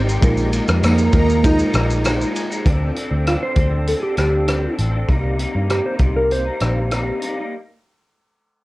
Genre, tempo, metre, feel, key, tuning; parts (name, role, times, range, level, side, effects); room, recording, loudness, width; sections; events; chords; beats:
indie pop, bedroom pop; 99 BPM; 4/4; straight; C minor; A4 = 439 Hz
electric guitar through a small old amp; accompaniment; 0.0-7.5 s; Bb2 to A4; -25 LUFS; left 1 dB; ensemble chorus, warbly pitch drift
reed electric piano; accompaniment; 0.0-2.7 s; Ab3 to Eb5; -24 LUFS; right 2 dB
lush unison pad; sustained chords; 0.0-2.6 s; G4 to C6; -31 LUFS; left 1 dB; chorus, tremolo
vintage muted picked electric bass; bass; 0.0-7.1 s; Ab1 to G2; -20 LUFS; equal
loose indie drum kit; drums; 0.1-7.4 s; hi-hat, kick drum, ride cymbal, rim click, shaker; -21 LUFS; equal
tambourine; percussion; 0.4-2.6 s; -42 LUFS; left 4 dB
clean lap steel guitar; melody; 0.8-7.2 s; Bb3 to C5; -20 LUFS; right 1 dB; analog chorus, slapback echo
moderate small room reverb, RT60 0.6 s; worn, warbling old tape, cassette tape, warbly pitch drift; -16 LUFS; side -19 dB against mid
0.0-2.7 A section; 2.7-7.5 B section
0.2 Bb7sus4; 2.7 Dm7; 5.1 Cm7
| 0.23 0.83 1.44 2.05 | 2.66 3.26 3.87 4.48 | 5.09 5.70 6.30 6.91